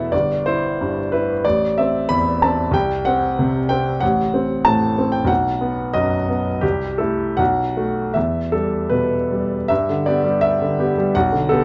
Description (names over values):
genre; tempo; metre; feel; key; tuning
classical, romantic character piece for solo piano; 75-95 BPM; 2/4; rubato; E minor; A4 = 441 Hz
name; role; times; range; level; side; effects
clear baby grand piano; solo; 0.0-11.6 s; G1 to B5; -19 LUFS; equal; none
room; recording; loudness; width
moderate large studio reverb, RT60 1.1 s; dark, warm production, nothing above 7.7 kHz; -19 LUFS; mono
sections
0.0-9.7 A section; 9.7-11.6 B section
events
none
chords
0.1 Em/G; 1.4 Am; 2.7 N.C.; 4.0 F#dim/A; 5.3 B5; 6.6 Am/C; 7.4 B5; 8.2 Em; 9.7 G